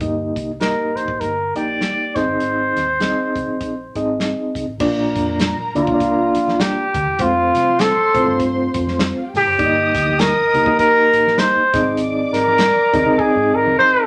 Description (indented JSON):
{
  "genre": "uptempo 1960s-style soul",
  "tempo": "100 BPM",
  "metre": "4/4",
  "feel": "swing 59% on 8ths",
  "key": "Bb major",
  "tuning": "A4 = 440 Hz",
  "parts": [
    { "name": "reed electric piano", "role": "accompaniment", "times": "0.0-14.0 s", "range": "G2 to G5", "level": "-23 LUFS", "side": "equal", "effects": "fast tremolo" },
    { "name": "vintage muted fingered electric bass", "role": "bass", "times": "0.0-13.9 s", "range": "E1 to C3", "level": "-33 LUFS", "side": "equal", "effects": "none" },
    { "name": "natural country drum kit", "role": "drums", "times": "0.0-13.4 s", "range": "crash cymbal, hi-hat, kick drum, snare drum", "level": "-26 LUFS", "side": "equal", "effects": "none" },
    { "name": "dark trumpet", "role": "melody", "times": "0.6-14.1 s", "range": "F4 to D5", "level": "-18 LUFS", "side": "equal", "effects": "none" },
    { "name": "muted studio string section", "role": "second line", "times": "4.8-14.1 s", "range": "F4 to Eb6", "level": "-30 LUFS", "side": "equal", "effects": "none" },
    { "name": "congas", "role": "percussion", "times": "4.8-14.0 s", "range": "none", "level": "-37 LUFS", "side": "equal", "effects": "none" }
  ],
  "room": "wet studio reverb, RT60 0.6 s",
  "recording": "none",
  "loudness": "-17 LUFS",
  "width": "mono",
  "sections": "0.0-4.8 A section; 4.8-14.1 B section",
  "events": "trumpet solo 4.8-14.1; drum fill 13.2-14.1",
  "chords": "0.0 Eb/G; 2.1 Ab; 4.8 Bb; 7.2 F; 9.6 Eb/G; 11.7 Ab"
}